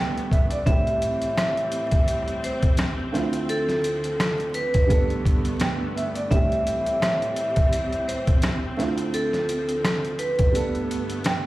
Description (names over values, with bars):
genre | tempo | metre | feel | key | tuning
hip hop, boom-bap hip-hop | 85 BPM | 4/4 | swing 56% on 16ths | A minor | A4 = 441 Hz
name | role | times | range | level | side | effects
dark upright piano | accompaniment | 0.0-11.5 s | G2 to G5 | -29 LUFS | right 3 dB | cassette tape, high-pass filter, low-pass filter
warm symphonic string section | sustained chords | 0.0-11.5 s | D2 to C4 | -30 LUFS | left 1 dB | high-pass filter, low-pass filter
boom bap sampler-style drum kit | drums | 0.2-11.4 s | hi-hat, kick drum, rim click, snare drum | -23 LUFS | equal | none
vibraphone with hard mallets | melody | 0.7-10.7 s | A4 to E5 | -26 LUFS | equal | high-pass filter, low-pass filter, ping-pong delay
room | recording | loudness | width
light reverb | played on a big sound system in a bare room, large studio reverb, vinyl crackle | -21 LUFS | side -17 dB against mid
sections
0.0-11.5 A section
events
break 10.5-11.5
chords
0.0 Gadd9; 0.7 Am7; 3.1 Dm7; 4.9 Gadd9; 6.3 Am7; 8.8 Dm7; 10.5 Gadd9